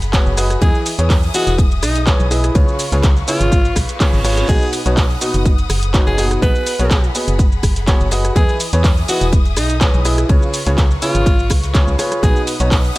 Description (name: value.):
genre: piano house.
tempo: 124 BPM.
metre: 4/4.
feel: swing 53% on 16ths.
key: unclear.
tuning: A4 = 441 Hz.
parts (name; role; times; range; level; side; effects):
muted symphonic string section; sustained chords; 0.0-13.0 s; G#4 to D#6; -29 LUFS; left 4 dB; sidechain pumping.
organ-like FM bass; bass; 0.0-12.9 s; E1 to E2; -18 LUFS; equal; sidechain pumping.
modern studio drum kit; drums; 0.0-13.0 s; hi-hat, ride cymbal, snare drum; -34 LUFS; left 3 dB; none.
punchy analog drum machine; drums; 0.0-13.0 s; crash cymbal, handclaps, hi-hat, rim click, shaker; -22 LUFS; right 1 dB; none.
clear upright piano; riff; 0.1-13.0 s; B2 to D#5; -21 LUFS; equal; vintage 12-bit sampler grit, sidechain pumping.
electronic kick drum; drums; 0.1-12.8 s; none; -14 LUFS; equal; none.
raspy alto saxophone; melody; 0.6-12.4 s; D#4 to B4; -22 LUFS; equal; digital delay.
reverse cymbal; sound effects; 3.8-4.5 s; none; -28 LUFS; right 3 dB; none.
room: small room ambience.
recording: none.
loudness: -12 LUFS.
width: side -19 dB against mid.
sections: 0.0-13.0 A section.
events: reverse cymbal 3.8-4.5.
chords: 0.0 G#m7; 0.6 Emaj7; 2.6 C#7; 4.5 B; 6.4 G#m7; 8.4 Emaj7; 10.3 C#7; 12.2 B.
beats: 0.13 | 0.62 1.10 1.58 2.07 | 2.55 3.04 3.52 4.00 | 4.49 4.97 5.46 5.94 | 6.42 6.91 7.39 7.88 | 8.36 8.84 9.33 9.81 | 10.29 10.78 11.26 11.75 | 12.23 12.71.